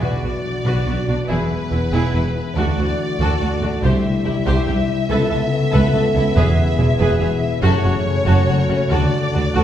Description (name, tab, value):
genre	cinematic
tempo	94 BPM (dotted quarters)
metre	12/8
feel	straight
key	E mixolydian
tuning	A4 = 439 Hz
part	rich symphonic violin section	melody	0.0-9.6 s	B4 to E5	-25 LUFS	left 1 dB	none
part	clear symphonic violin section	second line	0.0-9.6 s	B3 to C5	-29 LUFS	left 2 dB	none
part	rich symphonic viola section	accompaniment	0.0-9.6 s	E4 to A4	-26 LUFS	right 1 dB	none
part	mellow French horn section	sustained chords	0.0-9.6 s	G3 to A4	-25 LUFS	left 2 dB	none
part	concert harp	arpeggios	0.0-9.6 s	E2 to E4	-23 LUFS	left 3 dB	none
part	clear symphonic double bass section	bass	0.0-9.6 s	E1 to D2	-22 LUFS	right 2 dB	none
part	warm symphonic cello section	bass	0.0-9.6 s	C2 to B2	-22 LUFS	right 2 dB	none
part	timpani	percussion	0.0-0.6, 6.4-7.0 s	E2 to B2	-24 LUFS	equal	none
room	wet recital hall reverb, RT60 1.3 s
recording	heard from further back in the room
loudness	-16 LUFS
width	side -10 dB against mid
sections	0.0-9.6 A section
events	none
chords	0.0 Bm; 1.3 E; 2.6 D; 3.8 C; 5.1 Aadd9/C#; 6.4 E; 7.6 F#m; 8.9 D